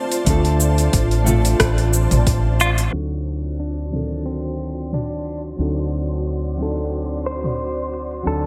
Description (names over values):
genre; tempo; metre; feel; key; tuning
sunset chillout; 90 BPM; 4/4; swing 55% on 16ths; unclear; A4 = 440 Hz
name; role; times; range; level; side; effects
nylon-string guitar; accompaniment; 0.0-8.5 s; Eb3 to A4; -29 LUFS; equal; delay
ethereal airy pad; sustained chords; 0.0-8.5 s; F4 to C6; -30 LUFS; equal; ensemble chorus, built-in reverb
deep house drum kit; drums; 0.1-8.5 s; cabasa, hi-hat, rim click, toms; -25 LUFS; equal; overdrive
mellow fretless electric bass; bass; 0.3-8.5 s; A1 to D2; -23 LUFS; equal; none
electronic kick drum; drums; 0.3-2.4 s; none; -23 LUFS; equal; overdrive
direct-recorded clean electric guitar; melody; 2.6-8.5 s; C4 to C5; -29 LUFS; equal; spring reverb, delay
room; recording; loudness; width
moderate lush hall reverb, RT60 2.1 s; bright 1980s-style digital production, low-pass filter; -20 LUFS; mono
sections
0.0-2.9 A section; 2.9-8.5 B section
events
none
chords
0.0 Dm7; 2.9 D7b9